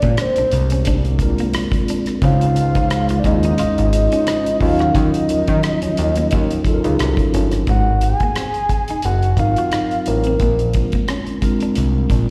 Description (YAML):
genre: R&B, neo-soul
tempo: 88 BPM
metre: 4/4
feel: swing 56% on 16ths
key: unclear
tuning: A4 = 440 Hz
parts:
  - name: soft octave-layered synth lead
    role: melody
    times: 0.0-11.1 s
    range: Bb4 to Ab5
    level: -23 LUFS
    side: equal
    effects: chorus, tremolo, slapback echo
  - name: semi-hollow electric guitar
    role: second line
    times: 0.0-12.2 s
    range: Ab3 to Gb4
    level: -30 LUFS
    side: equal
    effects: slapback echo
  - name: mellow tonewheel organ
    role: sustained chords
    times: 0.0-7.6 s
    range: Db3 to C5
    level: -31 LUFS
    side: equal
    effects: none
  - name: fat analog bass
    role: bass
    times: 0.0-12.3 s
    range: Gb1 to Eb3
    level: -20 LUFS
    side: equal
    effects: none
  - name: damped 70s drum kit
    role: drums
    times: 0.0-12.3 s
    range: hi-hat, kick drum, rim click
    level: -24 LUFS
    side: equal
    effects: none
  - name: mellow tine electric piano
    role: accompaniment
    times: 1.2-12.3 s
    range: F3 to C5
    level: -24 LUFS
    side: equal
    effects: phaser
room: studio reverb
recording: live gig heard through the venue's PA, recital hall reverb, vinyl crackle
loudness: -17 LUFS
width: mono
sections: 0.0-7.7 A section; 7.7-12.3 B section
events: none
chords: 0.0 Bb9; 2.2 Dbmaj9; 4.6 Ebm9; 7.7 Ab13; 10.4 Bb9